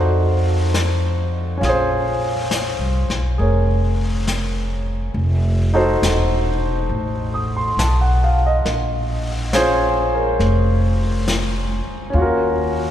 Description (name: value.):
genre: jazz ballad.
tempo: 68 BPM.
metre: 4/4.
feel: swing 68% on 8ths.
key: Bb minor.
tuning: A4 = 440 Hz.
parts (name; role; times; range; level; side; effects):
clear grand piano; accompaniment; 0.0-12.9 s; Db4 to Eb6; -20 LUFS; equal; none.
upright bass; bass; 0.0-12.9 s; E1 to F2; -19 LUFS; equal; none.
vintage brush drum kit; drums; 0.7-12.9 s; brushed snare drum, hi-hat, snare drum; -28 LUFS; left 3 dB; none.
room: wet cathedral reverb, RT60 5.3 s.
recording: recorded in a church or concert hall.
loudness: -16 LUFS.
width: side -11 dB against mid.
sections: 0.0-12.9 A section.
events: none.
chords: 0.0 F7b9; 1.6 Bbm9; 5.1 F7b9; 8.6 Bbm9; 12.2 Ebm7.